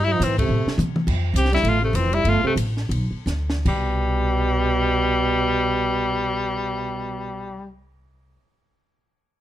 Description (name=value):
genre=jazz, small-group swing and bop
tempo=148-212 BPM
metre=4/4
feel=swing 59% on 8ths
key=C major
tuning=A4 = 440 Hz
part: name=bright tenor saxophone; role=melody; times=0.0-7.7 s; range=G3 to G4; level=-22 LUFS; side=left 4 dB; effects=none
part: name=mellow trombone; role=second line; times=0.0-7.7 s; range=B2 to C4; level=-26 LUFS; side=right 6 dB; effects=none
part: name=upright bass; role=bass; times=0.0-8.4 s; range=F1 to C3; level=-23 LUFS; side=equal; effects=none
part: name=compact cocktail drum kit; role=drums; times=0.2-6.8 s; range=crash cymbal, cymbal swell, hi-hat, kick drum, ride cymbal, snare drum, toms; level=-28 LUFS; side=equal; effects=none
room=light reverb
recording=close, detailed microphones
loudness=-19 LUFS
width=side -12 dB against mid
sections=0.0-1.1 A section; 1.1-3.7 B section; 3.7-6.9 C section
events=band accent 0.3; drum fill 0.5-1.1, 3.3-3.7; slowing down 1.1-3.7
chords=0.5 Am; 1.1 Fmaj9; 2.2 Gadd9; 3.7 C5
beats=0.21 0.49 0.77 | 1.06 1.34 1.63 1.93 | 2.24 2.56 2.90 3.26 | 3.65 4.06 4.46 4.87 | 5.27 5.68 6.08 6.49